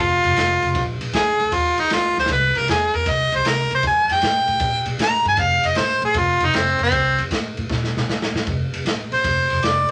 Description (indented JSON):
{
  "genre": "electric blues shuffle",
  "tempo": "155 BPM",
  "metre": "4/4",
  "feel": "swing 67% on 8ths",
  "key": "F mixolydian",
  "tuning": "A4 = 445 Hz",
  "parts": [
    { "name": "clear harmonica", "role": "melody", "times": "0.0-9.9 s", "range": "C4 to Bb5", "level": "-20 LUFS", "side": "equal", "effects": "overdrive" },
    { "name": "upright bass", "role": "bass", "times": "0.0-9.9 s", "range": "F1 to Bb2", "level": "-28 LUFS", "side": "equal", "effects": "none" },
    { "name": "raw garage drum kit", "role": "drums", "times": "0.2-9.9 s", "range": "kick drum, ride cymbal, snare drum", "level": "-27 LUFS", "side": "equal", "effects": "none" }
  ],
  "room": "moderate studio reverb, RT60 0.5 s",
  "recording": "none",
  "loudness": "-19 LUFS",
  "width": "mono",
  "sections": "0.0-8.5 A section; 8.5-9.9 A section",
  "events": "harmonica solo 0.0-8.5, 8.5-9.9; drum fill 2.1, 7.7-8.5",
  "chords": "0.0 F7(no3); 2.3 C7; 5.4 F; 6.9 Fadd11/C (rootless); 8.5 F",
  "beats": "0.37 | 0.75 1.14 1.52 1.91 | 2.29 2.68 3.07 3.45 | 3.84 4.22 4.61 5.00 | 5.38 5.77 6.15 6.54 | 6.93 7.31 7.70 8.09 | 8.47 8.86 9.24 9.63"
}